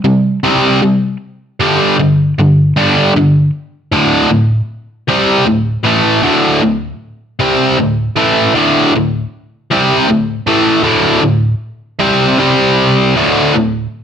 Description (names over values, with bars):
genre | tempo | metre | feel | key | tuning
rock | 52 BPM (dotted quarters) | 6/8 | straight | unclear | A4 = 440 Hz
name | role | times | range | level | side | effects
biting overdriven guitar | solo | 0.0-13.9 s | D2 to C4 | -10 LUFS | equal | none
room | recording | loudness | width
wet studio reverb, RT60 0.9 s | none | -10 LUFS | side -8 dB against mid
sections
0.0-3.9 A section; 3.9-14.0 B section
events
none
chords
0.0 C5; 1.6 G5; 3.9 D5; 12.4 C5; 13.2 D5